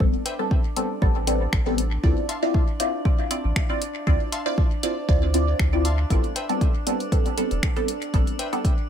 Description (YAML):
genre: dub techno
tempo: 118 BPM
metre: 4/4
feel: swing 53% on 16ths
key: A minor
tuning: A4 = 441 Hz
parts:
  - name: filtered dub chord stab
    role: stabs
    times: 0.0-8.8 s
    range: G3 to D5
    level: -26 LUFS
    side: equal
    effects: phaser, sidechain pumping, dub echo
  - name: soft dub sub bass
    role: bass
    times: 0.0-8.2 s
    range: E1 to D2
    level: -23 LUFS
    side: equal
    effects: sidechain pumping
  - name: electronic kick drum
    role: drums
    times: 0.0-8.8 s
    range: none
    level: -22 LUFS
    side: equal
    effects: none
  - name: drifting glass-harmonics texture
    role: texture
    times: 0.0-8.9 s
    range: D4 to D5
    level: -36 LUFS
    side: right 1 dB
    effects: chorus, built-in reverb, sidechain pumping
  - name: wavetable chord stab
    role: riff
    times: 0.3-8.5 s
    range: B4 to C6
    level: -36 LUFS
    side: left 3 dB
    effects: sidechain pumping, dub echo
  - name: deep house drum kit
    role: drums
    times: 0.3-8.8 s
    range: finger snaps, hi-hat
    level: -30 LUFS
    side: left 1 dB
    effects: dub echo
room: little or no reverb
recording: echo-heavy mix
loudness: -20 LUFS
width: side -9 dB against mid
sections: 0.0-8.9 A section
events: none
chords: 0.0 Am9; 2.0 Dm9; 6.1 Am9